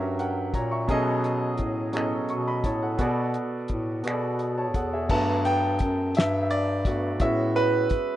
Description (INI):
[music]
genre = slow six-eight R&B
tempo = 57 BPM (dotted quarters)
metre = 6/8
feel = straight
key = unclear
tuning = A4 = 439 Hz
[part]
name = clear concert grand piano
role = accompaniment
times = 0.0-8.2 s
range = B2 to C#6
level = -26 LUFS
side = right 1 dB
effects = none
[part]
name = mellow bass clarinet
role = bass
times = 0.0-7.9 s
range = E2 to B2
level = -28 LUFS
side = left 1 dB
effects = none
[part]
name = cloth-damped thuddy drum kit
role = drums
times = 0.2-8.1 s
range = crash cymbal, finger snaps, hi-hat, kick drum, snare drum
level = -27 LUFS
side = left 1 dB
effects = none
[sound]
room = little or no reverb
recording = rough home demo mix, nothing above 10.8 kHz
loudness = -23 LUFS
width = side -13 dB against mid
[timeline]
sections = 0.0-5.1 A section; 5.1-8.2 B section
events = grand piano fill 0.0-0.9; grand piano solo 5.1-8.2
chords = 0.0 F#7b9; 0.9 B13; 3.0 E7sus4; 5.1 Gmaj9; 7.2 Amaj13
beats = | 0.89 1.94 | 2.99 4.04 | 5.10 6.15 | 7.20